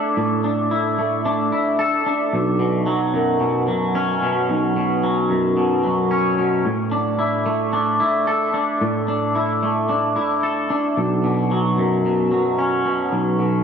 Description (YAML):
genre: rock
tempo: 111 BPM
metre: 4/4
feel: straight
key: B minor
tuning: A4 = 440 Hz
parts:
  - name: twangy electric guitar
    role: solo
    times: 0.0-13.6 s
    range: B1 to A4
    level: -17 LUFS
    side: equal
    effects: lush chorus, tape echo
room: wet concert hall reverb, RT60 2.0 s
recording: none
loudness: -17 LUFS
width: side -7 dB against mid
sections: 0.0-13.6 A section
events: none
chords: 0.0 Asus4; 2.3 Bsus2; 6.6 Asus4; 11.0 Bsus2